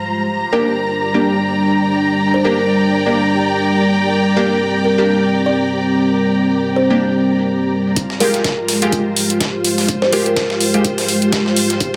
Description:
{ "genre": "bass house", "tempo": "125 BPM", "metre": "4/4", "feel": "swing 57% on 16ths", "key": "F dorian", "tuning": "A4 = 440 Hz", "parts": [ { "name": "dark analog pad", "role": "sustained chords", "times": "0.0-12.0 s", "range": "G3 to Bb4", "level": "-19 LUFS", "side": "equal", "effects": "chorus, sidechain pumping" }, { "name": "warm symphonic string section", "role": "texture", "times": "0.0-12.0 s", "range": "F4 to Bb5", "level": "-23 LUFS", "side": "equal", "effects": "sidechain pumping" }, { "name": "kalimba", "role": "melody", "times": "0.5-10.3 s", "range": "Bb4 to D5", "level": "-24 LUFS", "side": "equal", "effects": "delay" }, { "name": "orchestra-hit-like synth stab", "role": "stabs", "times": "0.5-10.9 s", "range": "Ab3 to G4", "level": "-24 LUFS", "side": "equal", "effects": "built-in reverb, sidechain pumping, delay" }, { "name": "dusty soul sampler-style drum kit", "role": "drums", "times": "8.0-12.0 s", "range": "hi-hat, snare drum", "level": "-26 LUFS", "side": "equal", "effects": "high-pass filter on hats, high-pass filter on snare" }, { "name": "electronic hi-hat", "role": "drums", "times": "8.0-11.9 s", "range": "none", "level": "-22 LUFS", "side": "equal", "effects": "none" }, { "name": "electronic kick drum", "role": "drums", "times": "8.0-11.9 s", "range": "none", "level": "-25 LUFS", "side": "equal", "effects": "high-pass filter on kick, high-pass filter on room" } ], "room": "moderate plate reverb, RT60 1.5 s, digital ambience", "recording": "none", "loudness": "-16 LUFS", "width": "mono", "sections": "0.0-8.0 A section; 8.0-12.0 B section", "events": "filter sweep on analog synth pad 0.0-8.0; build-up 8.0-12.0", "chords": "0.3 Gm; 8.0 Fmadd9" }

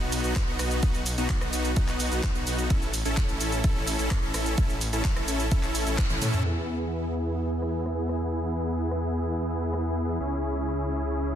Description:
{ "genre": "EDM, festival progressive house", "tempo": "128 BPM", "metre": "4/4", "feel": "straight", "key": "E major", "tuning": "A4 = 440 Hz", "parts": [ { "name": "supersaw chords", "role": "riff", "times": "0.0-11.4 s", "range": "B3 to A4", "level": "-29 LUFS", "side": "equal", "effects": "sidechain pumping, low-pass filter, ping-pong delay" }, { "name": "detuned saw bass", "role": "bass", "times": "0.0-11.4 s", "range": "A1 to A2", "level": "-30 LUFS", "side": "equal", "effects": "sidechain pumping" }, { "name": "house drum kit", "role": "drums", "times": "0.0-11.2 s", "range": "cabasa, handclaps, hi-hat, ride cymbal, rim click, toms", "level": "-32 LUFS", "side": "right 1 dB", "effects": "low-pass filter on hats, low-pass filter on perc, soft clipping on snare, low-pass filter on snare, low-pass filter on cymbals, low-pass filter on toms, low-pass filter on room" }, { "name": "electronic kick drum", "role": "drums", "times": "0.4-6.1 s", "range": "none", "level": "-26 LUFS", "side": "equal", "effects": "none" } ], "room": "light reverb", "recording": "dense, heavily limited modern master", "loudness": "-25 LUFS", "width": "side -10 dB against mid", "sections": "0.0-6.5 A section; 6.5-11.4 B section", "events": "drop 0.0-6.5; band accent 6.0; drum fill 6.1-6.5; filter sweep on supersaw synth 6.5-11.4", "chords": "0.0 B; 2.7 A; 6.5 E; 10.2 C#m" }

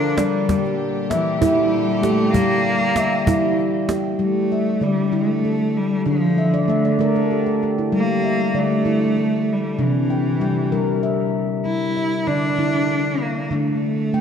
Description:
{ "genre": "world meditative, meditative tuned percussion", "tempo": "64 BPM (dotted quarters)", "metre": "6/8", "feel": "straight", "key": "G kumoi", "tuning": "A4 = 437 Hz", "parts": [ { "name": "rich cello", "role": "melody", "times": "0.0-14.2 s", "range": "D3 to E4", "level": "-22 LUFS", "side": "equal", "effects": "diffuse ambient delay" }, { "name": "warm studio string section", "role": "sustained chords", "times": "0.0-4.2 s", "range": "Bb2 to G4", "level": "-27 LUFS", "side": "equal", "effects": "none" }, { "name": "handpan", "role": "arpeggios", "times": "0.0-14.2 s", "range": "C3 to G5", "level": "-19 LUFS", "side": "left 1 dB", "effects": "diffuse ambient delay" }, { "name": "cajon", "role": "percussion", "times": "0.2-4.0 s", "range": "none", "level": "-25 LUFS", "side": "right 2 dB", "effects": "none" } ], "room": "wet echo chamber reverb, RT60 1.6 s, studio reverb", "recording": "dark, warm production", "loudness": "-17 LUFS", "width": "side -7 dB against mid", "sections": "0.0-4.2 A section; 4.2-14.2 B section", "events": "handpan fill 6.4-7.9", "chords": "0.5 Gm; 4.2 G5; 6.1 D5; 7.9 Gm; 9.8 C; 11.7 G5; 13.5 D5" }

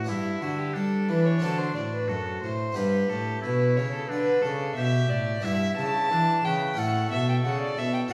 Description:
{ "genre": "classical, baroque-style sonata movement with continuo", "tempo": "90 BPM", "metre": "4/4", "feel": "straight", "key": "unclear", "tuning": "A4 = 440 Hz", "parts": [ { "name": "clear oboe", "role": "melody", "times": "0.0-8.1 s", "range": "D4 to B4", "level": "-37 LUFS", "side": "equal", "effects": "none" }, { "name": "rich violin", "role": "second line", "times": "0.0-8.1 s", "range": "E4 to A5", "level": "-30 LUFS", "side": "equal", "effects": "none" }, { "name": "harpsichord", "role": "accompaniment", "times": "0.0-8.1 s", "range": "F#2 to G4", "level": "-32 LUFS", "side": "equal", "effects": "none" }, { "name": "rich cello", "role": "bass", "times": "0.0-8.1 s", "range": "F#2 to G3", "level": "-32 LUFS", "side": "equal", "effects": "none" } ], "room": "wet recital hall reverb, RT60 1.5 s", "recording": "studio ambience", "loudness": "-26 LUFS", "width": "mono", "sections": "0.0-8.1 A section", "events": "none", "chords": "0.1 G; 1.4 D7; 2.8 G; 5.4 Em7/G; 6.8 A" }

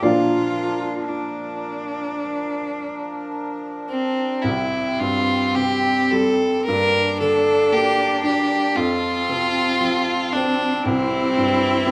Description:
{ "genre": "celtic folk, Celtic slow air", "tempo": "51-60 BPM", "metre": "4/4", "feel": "rubato", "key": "C mixolydian", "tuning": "A4 = 439 Hz", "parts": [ { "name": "warm cello", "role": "second line", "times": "0.0-11.9 s", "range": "C4 to F4", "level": "-28 LUFS", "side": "equal", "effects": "none" }, { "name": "clear upright piano", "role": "accompaniment", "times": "0.0-11.9 s", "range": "C2 to D5", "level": "-27 LUFS", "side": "equal", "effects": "none" }, { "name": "hand-pumped harmonium", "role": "sustained chords", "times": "0.0-11.9 s", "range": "E3 to A5", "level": "-32 LUFS", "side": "equal", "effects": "none" }, { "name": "rich fiddle", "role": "melody", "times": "3.9-11.9 s", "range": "C4 to Bb4", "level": "-22 LUFS", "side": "equal", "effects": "none" } ], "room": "moderate recital hall reverb, RT60 1.5 s", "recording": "none", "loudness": "-21 LUFS", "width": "mono", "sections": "0.0-4.5 A section; 4.5-11.9 B section", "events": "upright piano solo 0.0-4.5", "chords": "0.0 Bb; 4.5 C5; 6.7 Gmadd9; 8.8 F; 10.8 C" }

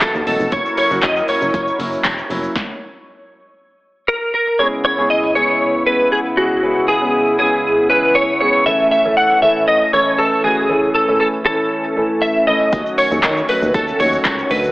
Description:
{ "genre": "dance-pop", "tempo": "118 BPM", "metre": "4/4", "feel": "straight", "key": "C# minor", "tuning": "A4 = 440 Hz", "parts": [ { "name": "direct-recorded clean electric guitar", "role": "melody", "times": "0.0-14.7 s", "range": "F#4 to F#5", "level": "-15 LUFS", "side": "equal", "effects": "ensemble chorus, tape echo" }, { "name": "warm baby grand piano", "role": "accompaniment", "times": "0.0-14.7 s", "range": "E3 to B4", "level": "-22 LUFS", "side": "equal", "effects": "sidechain pumping" }, { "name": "warm analog pad", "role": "sustained chords", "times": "0.0-14.7 s", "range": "C#3 to A#4", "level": "-24 LUFS", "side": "equal", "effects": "chorus, sidechain pumping" }, { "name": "deep house drum kit", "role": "drums", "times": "0.0-2.7, 12.7-14.7 s", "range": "handclaps, hi-hat, kick drum, shaker, snare drum", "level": "-21 LUFS", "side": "equal", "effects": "overdrive" }, { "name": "tambourine", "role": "percussion", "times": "0.0-2.4, 12.7-14.6 s", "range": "none", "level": "-37 LUFS", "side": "left 1 dB", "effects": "none" }, { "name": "solid FM bass", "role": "bass", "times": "0.1-2.5, 12.7-14.7 s", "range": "E1 to D#3", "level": "-23 LUFS", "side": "equal", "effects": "sidechain pumping" } ], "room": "light reverb, digital ambience", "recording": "AM radio sound", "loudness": "-13 LUFS", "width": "side -20 dB against mid", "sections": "0.0-4.6 A section; 4.6-14.7 A section", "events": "stop 2.6-4.6", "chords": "0.0 D#m7b5; 0.5 F#7; 4.6 C#m7; 8.7 A; 12.7 D#m7b5" }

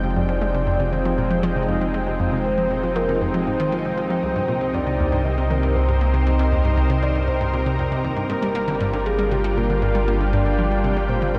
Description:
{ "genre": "ambient, sequencer-driven space music", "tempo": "118 BPM", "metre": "4/4", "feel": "straight", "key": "F dorian", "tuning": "A4 = 439 Hz", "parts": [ { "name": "lush unison pad", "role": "sustained chords", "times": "0.0-11.4 s", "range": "C3 to G5", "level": "-27 LUFS", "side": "equal", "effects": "chorus" }, { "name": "analog pluck", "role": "riff", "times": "0.0-11.4 s", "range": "C2 to Bb3", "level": "-28 LUFS", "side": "equal", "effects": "chorus, tape echo" }, { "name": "round analog bass", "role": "bass", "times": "0.0-11.4 s", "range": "F1 to C2", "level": "-26 LUFS", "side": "equal", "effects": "none" }, { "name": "wind-like tuned noise texture", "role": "texture", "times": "0.0-11.4 s", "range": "G4 to G5", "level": "-37 LUFS", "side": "equal", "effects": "built-in reverb" }, { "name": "soft octave-layered synth lead", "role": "melody", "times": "0.2-11.4 s", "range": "G4 to Eb5", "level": "-28 LUFS", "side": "equal", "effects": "chorus, phaser, tape echo" } ], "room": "wet cathedral reverb, RT60 5.1 s", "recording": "in a vast, echoing space", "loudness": "-21 LUFS", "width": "mono", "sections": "0.0-11.4 A section", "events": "none", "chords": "0.0 Fm7; 4.2 Cm7; 8.3 Gm7" }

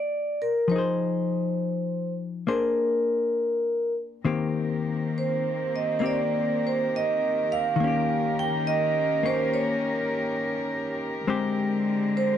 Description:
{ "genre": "jazz ballad", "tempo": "68 BPM", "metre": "4/4", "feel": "swing 66% on 8ths", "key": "Bb major, Eb major from 4.2 s", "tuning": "A4 = 440 Hz", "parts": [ { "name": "vibraphone with medium mallets", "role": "melody", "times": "0.0-12.4 s", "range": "Bb4 to G5", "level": "-26 LUFS", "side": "right 2 dB", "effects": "none" }, { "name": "hollow-body jazz guitar", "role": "accompaniment", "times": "0.0-12.4 s", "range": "Eb3 to C5", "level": "-27 LUFS", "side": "left 5 dB", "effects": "none" }, { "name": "dark chamber cello section", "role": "sustained chords", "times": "4.2-12.4 s", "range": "D3 to Bb4", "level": "-30 LUFS", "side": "equal", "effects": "none" } ], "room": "small room ambience", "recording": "dry, close 1970s-style studio recording", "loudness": "-24 LUFS", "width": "side -9 dB against mid", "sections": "0.0-4.2 A section; 4.2-12.4 B section", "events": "none", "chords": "0.0 Bbsus2; 0.7 Fm7; 2.5 Bb9; 4.2 Eb6; 7.8 Eb7; 11.3 Abmaj9#11" }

